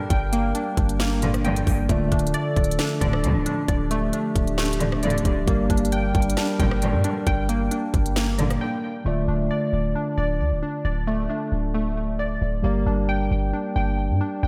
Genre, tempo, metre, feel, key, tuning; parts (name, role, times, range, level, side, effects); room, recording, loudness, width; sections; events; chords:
hip hop, trap; 134 BPM; 4/4; half-time; D minor; A4 = 439 Hz
mellow tine electric piano; accompaniment; 0.0-14.5 s; D3 to D5; -31 LUFS; equal
warbly tape-like pad; sustained chords; 0.0-9.0 s; F3 to Bb4; -35 LUFS; equal; chorus, built-in reverb
glassy digital keys; arpeggios; 0.0-14.5 s; A3 to G5; -29 LUFS; equal; chorus, delay
warm 808-style bass; bass; 0.1-14.5 s; D1 to G2; -27 LUFS; equal
trap drum kit; drums; 0.1-8.6 s; hi-hat, kick drum, rim click, snare drum; -27 LUFS; equal
muted studio string section; stabs; 1.2-8.5 s; A1 to D3; -29 LUFS; equal; delay
moderate lush hall reverb, RT60 1.6 s, digital ambience; dreamy mix soaked in reverb; -23 LUFS; mono
0.0-9.1 A section; 9.1-14.5 B section
break 8.6-9.1
0.0 Gm; 1.9 Dm; 5.5 Gm; 9.1 Dm; 12.6 Gm